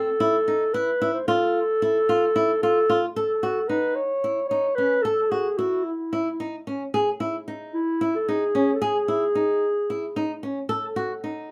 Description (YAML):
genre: contemporary instrumental, contemporary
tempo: 223 BPM (eighths)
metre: 7/8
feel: straight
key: F# dorian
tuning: A4 = 439 Hz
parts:
  - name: dark clarinet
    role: melody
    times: 0.0-10.4 s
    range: E4 to C#5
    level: -24 LUFS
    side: equal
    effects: none
  - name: flamenco guitar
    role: arpeggios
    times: 0.0-11.5 s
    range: C#4 to A4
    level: -28 LUFS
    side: equal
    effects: none
room: light reverb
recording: none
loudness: -24 LUFS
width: mono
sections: 0.0-3.2 A section; 3.2-11.5 B section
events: none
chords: 0.0 A5; 1.3 F; 3.2 F#m; 6.9 C#madd9; 10.7 F#m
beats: 0.21 0.48 0.75 1.01 | 1.28 1.55 1.82 2.09 2.36 2.63 2.90 | 3.17 3.44 3.70 3.97 4.24 4.51 4.78 | 5.05 5.32 5.59 5.86 6.12 6.39 6.66 | 6.93 7.20 7.47 7.74 8.01 8.28 8.54 | 8.81 9.08 9.35 9.62 9.89 10.16 10.43 | 10.69 10.96 11.23 11.50